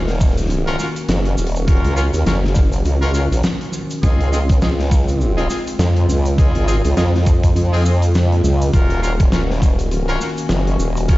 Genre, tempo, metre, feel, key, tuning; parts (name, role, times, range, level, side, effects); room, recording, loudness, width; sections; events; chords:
glitch hop; 102 BPM; 4/4; swing 58% on 16ths; Eb dorian; A4 = 440 Hz
warbly tape-like pad; sustained chords; 0.0-11.2 s; Db3 to Gb4; -25 LUFS; left 1 dB; chorus, built-in reverb, sidechain pumping
formant-sweep wobble bass; bass; 0.0-11.2 s; Eb1 to F2; -16 LUFS; equal; chorus
huge arena drum kit; drums; 0.1-11.2 s; hi-hat, snare drum; -25 LUFS; left 1 dB
electronic kick drum; drums; 0.2-11.2 s; -14 LUFS; equal
tube shaker; percussion; 0.2-11.2 s; -34 LUFS; right 2 dB
bright horn section; stabs; 0.7-11.2 s; C4 to Bb4; -26 LUFS; left 1 dB; sidechain pumping, tape echo
studio ambience; played on a big sound system in a bare room, stone room reverb, nothing above 7.7 kHz; -14 LUFS; side -18 dB against mid
0.0-11.2 A section
0.0 Ebm7; 4.0 Dbmaj7; 8.7 Ebm7